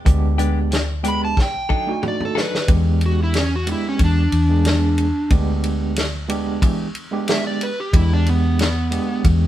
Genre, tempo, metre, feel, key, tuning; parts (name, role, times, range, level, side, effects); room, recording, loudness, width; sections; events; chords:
straight-eighth soul blues; 91 BPM; 4/4; straight; E mixolydian; A4 = 439 Hz
overdriven tine electric piano; accompaniment; 0.0-9.5 s; G#3 to G#4; -25 LUFS; right 5 dB; medium tremolo
vintage muted fingered electric bass; bass; 0.1-9.5 s; B1 to E3; -19 LUFS; left 1 dB
warm soul drum kit; drums; 0.1-9.4 s; hi-hat, kick drum, ride cymbal, snare drum, toms; -20 LUFS; equal
direct-recorded clean electric guitar; stabs; 0.4-2.6 s; F#3 to A4; -28 LUFS; left 7 dB; digital delay
overdriven slide guitar; melody; 1.1-9.2 s; B3 to B5; -23 LUFS; right 1 dB
moderate stone room reverb, RT60 1.2 s; band playing live in one room; -17 LUFS; side -13 dB against mid
0.0-2.7 A section; 2.7-9.5 B section
drum fill 1.4-2.7; electric slide guitar solo 2.7-9.5
0.0 E7#9 (rootless); 1.4 B7#9; 2.7 E7#9